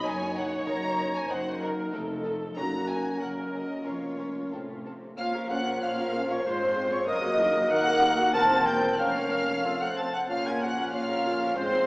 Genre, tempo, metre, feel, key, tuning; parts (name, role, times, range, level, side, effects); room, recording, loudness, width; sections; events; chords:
quick classical-period movement for symphony orchestra; 94 BPM; 2/4; rubato; Bb minor; A4 = 442 Hz
rich chamber violin section; melody; 0.0-11.9 s; Db5 to A6; -35 LUFS; left 1 dB
rich chamber violin section; second line; 0.0-11.9 s; C4 to A5; -36 LUFS; equal
rich chamber viola section; accompaniment; 0.0-11.9 s; Gb3 to Db5; -34 LUFS; equal
dark French horn section; sustained chords; 0.0-11.9 s; F3 to F4; -33 LUFS; equal
rich chamber cello section; bass; 0.0-11.9 s; Eb2 to C3; -39 LUFS; equal
rich chamber double bass section; bass; 0.0-11.9 s; E1 to Eb2; -44 LUFS; equal
clear oboe; second line; 5.2-11.9 s; C5 to A5; -35 LUFS; equal
silver concert flute; second line; 5.2-11.9 s; C5 to A5; -32 LUFS; equal
warm clarinet; second line; 5.2-11.9 s; F4 to Db5; -34 LUFS; equal
mellow bassoon; accompaniment; 5.2-11.9 s; F3 to F4; -32 LUFS; equal
dark trumpet section; stabs; 5.2-11.9 s; C5 to A5; -29 LUFS; equal
wet concert hall reverb, RT60 2.3 s; heard from further back in the room, small speaker sound; -25 LUFS; side -25 dB against mid
0.0-5.2 A section; 5.2-11.9 B section
0.0 Ebm/Gb; 1.9 F7; 2.6 Gb; 3.9 Bbm/F; 4.5 F; 5.2 Bbm; 6.5 Fm/Ab; 7.1 Ebm/Gb; 7.7 Ebm; 8.3 C7/E; 9.0 Bbm/F; 9.6 F; 10.3 Bbm